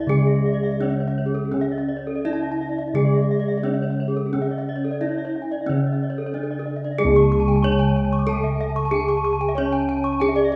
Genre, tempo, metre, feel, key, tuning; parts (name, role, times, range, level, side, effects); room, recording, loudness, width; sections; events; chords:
Balinese gamelan; 83-93 BPM; 4/4; straight; C# pelog; A4 = 440 Hz
gamelan-type bronze metallophone; melody; 0.0-10.6 s; C#4 to C#5; -27 LUFS; equal
gamelan-type bronze metallophone; accompaniment; 0.0-10.6 s; C#3 to C#4; -31 LUFS; equal
gamelan-type bronze metallophone; arpeggios; 0.0-10.5 s; G#4-30c to C#6; -35 LUFS; equal
gamelan-type bossed gongs; bass; 0.0-10.6 s; C#2 to C#5; -25 LUFS; equal
gamelan-type bronze metallophone; arpeggios; 0.2-10.6 s; G#4-30c to D6+20c; -32 LUFS; equal
wet large studio reverb, RT60 1.4 s; band playing live in one room, small room ambience; -22 LUFS; mono
0.0-7.0 A section; 7.0-10.6 B section